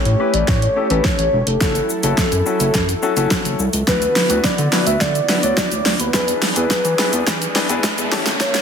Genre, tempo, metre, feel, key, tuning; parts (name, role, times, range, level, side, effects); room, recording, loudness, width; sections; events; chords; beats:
dance-pop; 106 BPM; 4/4; straight; A4 = 440 Hz
warm velvety synth lead; melody; 0.0-8.6 s; A4 to E5; -21 LUFS; equal; chorus, digital delay
clear baby grand piano; accompaniment; 0.0-8.6 s; C#4 to D5; -24 LUFS; left 5 dB; sidechain pumping
warm analog pad; sustained chords; 0.0-8.6 s; D3 to A4; -26 LUFS; right 1 dB; chorus, sidechain pumping
round analog bass; bass; 0.1-8.6 s; E1 to E3; -21 LUFS; equal; sidechain pumping
pop drum kit; drums; 0.1-8.6 s; hi-hat, kick drum, shaker, snare drum; -19 LUFS; equal
riser; sound effects; 5.8-8.6 s; -29 LUFS; right 2 dB
light reverb; dense, heavily limited modern master, high-pass filter; -15 LUFS; side -7 dB against mid
0.0-8.6 A section
build-up 0.0-8.6; drum fill 0.0-8.6; filter sweep 0.0-8.6; riser 5.8-8.6
0.0 A7; 1.6 F#m7; 3.9 D69; 6.1 E7
0.48 1.05 | 1.61 2.18 2.74 3.31 | 3.88 4.44 5.01 5.57 | 6.14 6.71 7.27 7.84 | 8.40